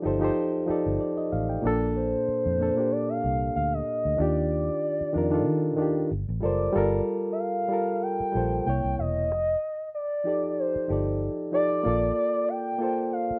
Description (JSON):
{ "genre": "R&B, neo-soul", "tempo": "94 BPM", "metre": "4/4", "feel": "swing 54% on 16ths", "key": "G minor", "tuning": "A4 = 440 Hz", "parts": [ { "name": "bright reed electric piano", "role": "accompaniment", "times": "0.0-13.4 s", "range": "Bb2 to G5", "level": "-29 LUFS", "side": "equal", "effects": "none" }, { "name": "vintage muted fingered electric bass", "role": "bass", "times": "0.1-13.3 s", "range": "E1 to Eb3", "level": "-32 LUFS", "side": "equal", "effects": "none" }, { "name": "gliding portamento lead", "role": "melody", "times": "2.0-13.4 s", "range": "C5 to G5", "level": "-30 LUFS", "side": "equal", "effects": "chorus" } ], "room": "light reverb", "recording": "rough home demo mix", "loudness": "-27 LUFS", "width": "mono", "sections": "0.0-6.7 A section; 6.7-13.4 B section", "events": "none", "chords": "0.0 F13; 1.6 Bbmaj7; 4.2 Ebmaj9; 6.1 Gm11; 6.7 Gm9; 8.6 C7b9; 9.3 F13; 11.8 Bbmaj7" }